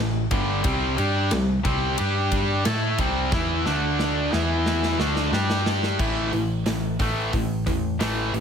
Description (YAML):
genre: hard rock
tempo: 90 BPM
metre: 4/4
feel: straight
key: A minor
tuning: A4 = 440 Hz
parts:
  - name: tight distorted guitar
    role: riff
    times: 0.0-8.4 s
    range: G2 to A4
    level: -26 LUFS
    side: left 10 dB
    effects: distortion
  - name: tight distorted guitar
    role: riff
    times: 0.0-8.4 s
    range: G2 to A4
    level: -26 LUFS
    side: right 11 dB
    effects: distortion
  - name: hollow-body short-scale picked electric bass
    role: bass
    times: 0.0-8.4 s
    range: G1 to A2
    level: -27 LUFS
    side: equal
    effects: none
  - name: big rock drum kit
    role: drums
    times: 0.3-8.4 s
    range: crash cymbal, hi-hat, kick drum, ride cymbal, snare drum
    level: -28 LUFS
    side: equal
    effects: none
room: light reverb, small room ambience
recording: none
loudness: -21 LUFS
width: side -7 dB against mid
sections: 0.0-6.0 A section; 6.0-8.4 B section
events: drum fill 3.3-6.0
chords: 0.0 A5; 0.7 C5; 2.0 G5; 2.7 C5; 3.7 D5; 4.3 E5; 5.0 D5; 5.3 G5; 6.0 A5